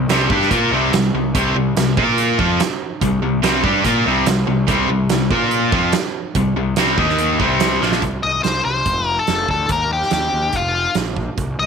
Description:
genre	classic rock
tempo	144 BPM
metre	4/4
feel	straight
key	C minor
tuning	A4 = 440 Hz
part	crunchy overdriven guitar	riff	0.0-8.0 s	Bb2 to Bb4	-20 LUFS	right 13 dB	none
part	distorted electric guitar	riff	0.0-8.0 s	Bb2 to Bb4	-19 LUFS	left 11 dB	distortion
part	fuzz picked electric bass	bass	0.0-11.7 s	F1 to Bb2	-22 LUFS	left 1 dB	overdrive
part	huge arena drum kit	drums	0.1-11.5 s	hi-hat, kick drum, snare drum	-22 LUFS	right 5 dB	none
part	octave-fuzz lead guitar	melody	8.2-11.7 s	F4 to Eb5	-18 LUFS	left 3 dB	distortion
room	light reverb, small room ambience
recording	1960s-style stereo with parts hard left and right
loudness	-15 LUFS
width	side -6 dB against mid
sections	0.0-8.0 A section; 8.0-11.7 B section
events	drum fill 7.8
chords	0.0 C5; 2.0 Bb5; 2.4 C5; 5.3 Bb5; 5.7 C5; 7.0 Eb5; 7.4 C5; 8.0 Cm; 8.9 F6; 9.7 Eb; 10.5 Fsus4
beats	0.09 0.51 0.93 | 1.35 1.76 2.18 2.60 | 3.02 3.43 3.85 4.27 | 4.69 5.10 5.52 5.94 | 6.35 6.77 7.19 7.61 | 8.02 8.44 8.86 9.28 | 9.70 10.12 10.54 10.96 | 11.37

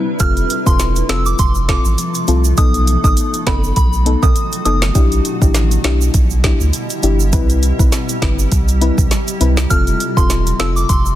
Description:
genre	dancehall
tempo	101 BPM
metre	4/4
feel	swing 56% on 16ths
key	unclear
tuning	A4 = 437 Hz
part	soft round pluck	accompaniment	0.0-10.9 s	B3 to B4	-22 LUFS	left 6 dB	chorus, sidechain pumping
part	granular cloud pad	sustained chords	0.0-11.2 s	B2 to B4	-24 LUFS	equal	built-in reverb, sidechain pumping
part	soft synth bell	melody	0.2-4.8, 9.7-11.0 s	B5 to F6	-21 LUFS	right 1 dB	chorus, digital delay
part	saturated sub bass	bass	0.2-11.2 s	E1 to D2	-16 LUFS	equal	none
part	afro-pop drum kit	drums	0.2-11.0 s	hi-hat, kick drum, snare drum	-15 LUFS	equal	soft clipping on snare
part	egg shaker and timbales	percussion	0.2-11.2 s	none	-26 LUFS	right 13 dB	none
room	digital ambience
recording	dense, heavily limited modern master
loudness	-12 LUFS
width	side -13 dB against mid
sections	0.2-11.2 A section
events	none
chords	0.2 F; 2.6 B7; 5.0 Em7; 7.3 Cmaj7; 9.7 F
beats	| 0.20 0.80 1.39 1.98 | 2.58 3.17 3.77 4.36 | 4.95 5.55 6.14 6.74 | 7.33 7.92 8.52 9.11 | 9.71 10.30 10.89

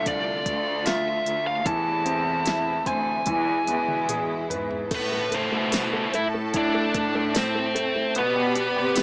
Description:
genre	pop ballad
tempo	74 BPM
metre	4/4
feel	straight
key	A minor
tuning	A4 = 440 Hz
part	biting lead guitar	melody	0.0-9.0 s	A3 to A5	-28 LUFS	equal	overdrive
part	clear baby grand piano	accompaniment	0.0-9.0 s	D3 to C5	-32 LUFS	equal	none
part	warm studio string section	sustained chords	0.0-9.0 s	B2 to B5	-35 LUFS	equal	none
part	clear studio cello section	bass	0.0-9.0 s	C2 to C3	-34 LUFS	equal	none
part	smooth R&B drum kit	drums	0.1-9.0 s	crash cymbal, hi-hat, kick drum, snare drum, toms	-32 LUFS	equal	none
part	impact	sound effects	5.1-8.2 s	none	-47 LUFS	equal	none
part	tambourine	percussion	5.7-9.0 s	none	-40 LUFS	equal	none
part	dark French horn section	second line	9.0 s	G4	-31 LUFS	equal	none
room	light reverb, small room ambience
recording	small speaker sound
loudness	-25 LUFS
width	mono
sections	0.0-4.9 A section; 4.9-9.0 B section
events	drum fill 3.3-4.9; impact 4.9-8.2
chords	0.0 Dm; 1.7 Am/E; 3.3 E; 4.9 Am; 8.2 G/B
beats	0.06 0.86 | 1.66 2.46 3.27 4.09 | 4.91 5.73 6.54 7.35 | 8.15 8.96

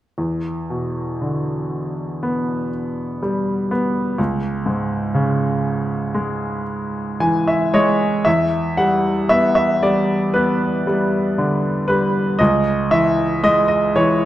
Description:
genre	classical, lyrical solo piano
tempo	59 BPM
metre	4/4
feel	uneven beats, rubato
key	unclear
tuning	A4 = 440 Hz
part	clear baby grand piano	solo	0.2-14.3 s	C#2 to G#5	-17 LUFS	equal	none
room	moderate scoring stage reverb, RT60 1.6 s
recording	dark, warm production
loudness	-17 LUFS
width	side -13 dB against mid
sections	0.2-8.3 A section; 8.3-14.3 B section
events	grand piano fill 6.7-8.3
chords	0.2 Em7; 4.2 C#m; 8.3 Em7; 12.4 C#m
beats	| 0.19 1.21 2.23 3.22 | 4.19 5.15 6.15 7.20 | 8.26 9.31 10.36 11.38 | 12.40 13.43

